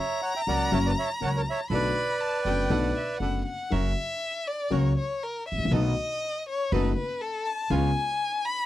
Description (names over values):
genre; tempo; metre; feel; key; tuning
tango; 121 BPM; 4/4; rubato; B minor; A4 = 440 Hz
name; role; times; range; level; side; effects
bandoneon; melody; 0.0-3.2 s; A#4 to G5; -28 LUFS; right 2 dB; none
warm violin; second line; 0.0-8.7 s; A4 to B5; -30 LUFS; left 2 dB; none
dark concert grand piano; accompaniment; 0.5-7.9 s; F#1 to F#4; -29 LUFS; left 4 dB; none
bandoneon; stabs; 0.5-7.9 s; B3 to B4; -36 LUFS; right 7 dB; none
upright bass; bass; 0.5-7.9 s; F#1 to C#2; -28 LUFS; right 2 dB; none
room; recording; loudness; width
light reverb; dry, close 1970s-style studio recording; -25 LUFS; side -14 dB against mid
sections
0.0-3.7 A section; 3.7-8.7 B section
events
violin solo 3.7-8.7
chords
0.0 F#; 1.7 Bm7; 3.7 F#; 5.7 B7; 7.7 C#7